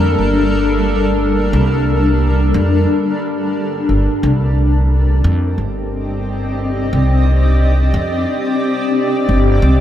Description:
ambient dub; 89 BPM; 4/4; swing 54% on 16ths; C dorian; A4 = 441 Hz
granular cloud pad; sustained chords; 0.0-9.8 s; G3 to Eb5; -16 LUFS; left 1 dB; built-in reverb
upright bass; bass; 0.0-9.8 s; G1 to F2; -14 LUFS; equal; tube saturation
moderate scoring stage reverb, RT60 2.0 s; -13 LUFS; side -11 dB against mid
0.0-9.8 A section
0.0 Gm; 4.2 Cm7

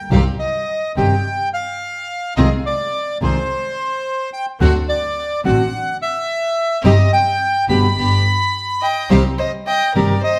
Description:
tango; 106 BPM; 4/4; rubato; C minor; A4 = 444 Hz
bandoneon; melody; 0.0-10.4 s; C5 to B5; -22 LUFS; equal; tape echo
nylon-string guitar; accompaniment; 0.1-10.1 s; B2 to G4; -21 LUFS; equal
rich chamber string section; stabs; 0.1-10.2 s; B3 to Ab4; -30 LUFS; equal
dark double bass; bass; 0.1-10.2 s; G1 to D2; -20 LUFS; equal
warm violin; second line; 8.8-10.4 s; Bb4 to Eb5; -24 LUFS; equal
moderate large studio reverb, RT60 1.3 s; -18 LUFS; mono
0.1-10.4 A section
0.1 Cm; 2.4 Ab6/C; 4.6 D7; 6.8 Cm/G; 8.0 G; 9.1 Cm

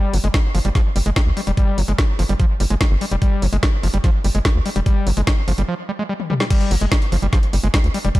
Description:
psychedelic trance; 146 BPM; 4/4; straight; A4 = 444 Hz
screaming distorted acid line; riff; 0.0-8.2 s; F3 to Ab3; -24 LUFS; moving between left 4 dB and right 4 dB; distortion, chorus, auto-pan, vintage 12-bit sampler grit, sidechain pumping, digital delay
tight sequencer bass; bass; 0.1-8.1 s; F1 to D2; -18 LUFS; equal
drum and bass drum kit; drums; 0.1-8.2 s; crash cymbal, hi-hat, snare drum, toms; -25 LUFS; equal; overdrive
electronic kick drum; drums; 0.3-8.2 s; -17 LUFS; equal; overdrive
digital ambience; dark, warm production; -16 LUFS; side -18 dB against mid
0.0-6.5 A section; 6.5-8.2 B section
break 5.7-6.5; drum fill 6.2-6.5; drop 6.5-8.2
0.0 G5

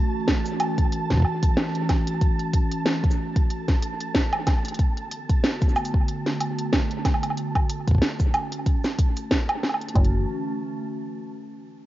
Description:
IDM; 93 BPM; 4/4; swing 56% on 16ths; F# minor; A4 = 440 Hz
warbly tape-like pad; sustained chords; 0.0-10.3 s; D3 to F#4; -30 LUFS; right 1 dB; chorus, built-in reverb, cassette tape
flickering grainy texture; texture; 0.0-10.0 s; A5; -35 LUFS; right 4 dB; built-in reverb, cassette tape
electronic kick drum; drums; 0.3-10.1 s; -21 LUFS; equal; cassette tape
organic electronic drum kit; drums; 0.3-10.1 s; cabasa, hi-hat, snare drum, woodblock; -26 LUFS; equal; overdrive, cassette tape, analog delay
metallic FM bass; bass; 10.0-10.3 s; F#1; -23 LUFS; equal; tube saturation
light reverb; home recording on cassette, nothing above 7.5 kHz; -21 LUFS; side -15 dB against mid
0.0-10.0 A section; 10.0-11.9 B section
0.0 F#m7; 4.8 Bm7; 10.0 F#m7

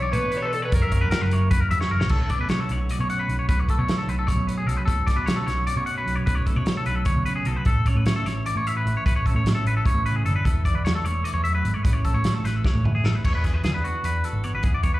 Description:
math rock and midwest emo; 302 BPM (eighths); 7/8; straight; A4 = 440 Hz
crunchy overdriven guitar; melody; 0.0-1.5 s; A4 to C#5; -28 LUFS; right 1 dB; slapback echo
twelve-string electric guitar; accompaniment; 0.0-15.0 s; F#2 to A4; -31 LUFS; right 3 dB; spring reverb, slapback echo
twangy electric guitar; arpeggios; 0.0-15.0 s; F#4 to F#5; -27 LUFS; left 1 dB; spring reverb, slapback echo
hollow-body short-scale picked electric bass; bass; 0.0-15.0 s; E1 to B2; -24 LUFS; equal
loose indie drum kit; drums; 0.1-14.9 s; crash cymbal, hi-hat, kick drum, snare drum, toms; -25 LUFS; equal
little or no reverb; live gig heard through the venue's PA, club reverb; -20 LUFS; side -17 dB against mid
0.0-2.1 A section; 2.1-13.2 B section; 13.2-15.0 C section
drum fill 1.8, 12.6-13.2
0.0 Em7/B; 0.7 F#7b9; 2.1 Bm9; 7.7 A; 10.5 E7sus4; 11.8 Amaj9; 13.2 E9

